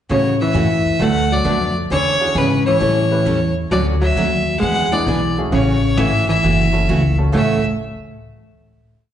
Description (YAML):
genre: country, western swing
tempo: 132 BPM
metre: 4/4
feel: swing 67% on 8ths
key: A major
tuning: A4 = 438 Hz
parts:
  - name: clear fiddle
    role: melody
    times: 0.1-7.6 s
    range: B4 to F#5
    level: -20 LUFS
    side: left 1 dB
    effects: slapback echo
  - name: vintage hollow-body jazz guitar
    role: second line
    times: 0.1-7.6 s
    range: C#3 to A3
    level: -19 LUFS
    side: equal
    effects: slapback echo
  - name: picked steel-string acoustic guitar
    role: accompaniment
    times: 0.1-7.6 s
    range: A2 to B4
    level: -23 LUFS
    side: right 3 dB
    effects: slapback echo
  - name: upright bass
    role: bass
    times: 0.1-7.6 s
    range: F#1 to A2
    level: -20 LUFS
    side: left 1 dB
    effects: none
  - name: clear upright piano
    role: accompaniment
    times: 1.4-7.6 s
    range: G#3 to B4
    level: -27 LUFS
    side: left 1 dB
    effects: slapback echo
room: moderate club reverb, RT60 0.7 s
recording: live gig heard through the venue's PA, recital hall reverb, nothing above 10.5 kHz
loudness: -14 LUFS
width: side -10 dB against mid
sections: 0.1-7.3 A section; 7.3-9.1 final chord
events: none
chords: 0.1 A6; 1.0 D6; 1.9 E13; 2.8 A7; 3.7 Dmaj7; 4.6 E7; 5.5 A6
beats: | 0.09 0.54 0.99 1.45 | 1.90 2.35 2.81 3.26 | 3.71 4.17 4.62 5.07 | 5.53 5.98 6.43 6.89 | 7.34